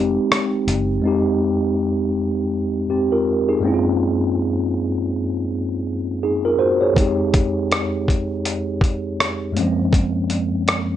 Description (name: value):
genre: lo-fi hip hop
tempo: 81 BPM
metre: 4/4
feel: swing 58% on 16ths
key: unclear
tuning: A4 = 440 Hz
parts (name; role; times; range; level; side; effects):
- mellow tine electric piano; accompaniment; 0.0-11.0 s; F2 to Db5; -18 LUFS; equal; medium stereo tremolo
- vintage muted fingered electric bass; bass; 0.0-1.0 s; F1 to Gb1; -23 LUFS; equal; none
- dusty soul sampler-style drum kit; drums; 0.3-0.9, 7.0-10.9 s; hi-hat, kick drum, rim click; -19 LUFS; equal; vintage 12-bit sampler grit
room: moderate studio reverb, RT60 0.6 s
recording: none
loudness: -18 LUFS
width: side -11 dB against mid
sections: 0.0-1.0 A section; 1.0-11.0 B section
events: break 0.0-1.0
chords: 0.0 Fm9; 3.6 Gbmaj9#11; 7.0 Fm9; 9.6 Gbmaj9#11